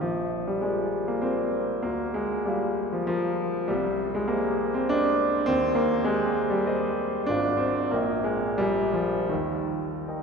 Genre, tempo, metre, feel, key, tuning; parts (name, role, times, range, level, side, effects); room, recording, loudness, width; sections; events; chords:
classical, romantic character piece for solo piano; 74-105 BPM; 3/4; rubato; A4 = 438 Hz
warm grand piano; solo; 0.0-10.2 s; Ab1 to Ab5; -24 LUFS; equal
wet church reverb, RT60 3.1 s; minimal, uncompressed stereo recording; -24 LUFS; side -5 dB against mid
0.0-10.2 A section
0.0 Bb; 1.9 Bb/D; 3.7 Cm; 5.5 Cm/Eb; 7.3 Fm/Ab; 7.9 Eb/Bb; 8.6 Bb7; 9.3 Eb